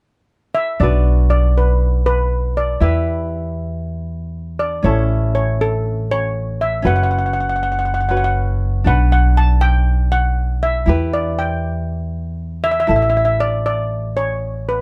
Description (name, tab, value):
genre	calypso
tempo	119 BPM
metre	4/4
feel	straight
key	B minor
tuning	A4 = 440 Hz
part	steel pan	melody	0.5-14.8 s	A4 to A5	-22 LUFS	equal	none
part	tenor ukulele	accompaniment	0.8-14.8 s	C#4 to E5	-27 LUFS	equal	none
part	upright bass	bass	0.8-14.8 s	F#1 to E2	-20 LUFS	equal	none
room	little or no reverb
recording	close, detailed microphones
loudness	-18 LUFS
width	mono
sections	0.8-14.8 A section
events	none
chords	0.0 N.C.; 0.8 Bm; 2.8 Em; 4.8 A; 6.8 F#sus4; 8.9 Bm; 10.9 Em; 12.9 A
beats	0.30 | 0.81 1.31 1.81 2.31 | 2.82 3.32 3.83 4.33 | 4.83 5.34 5.84 6.34 | 6.85 7.35 7.86 8.36 | 8.86 9.37 9.87 10.38 | 10.88 11.38 11.89 12.39 | 12.89 13.40 13.90 14.40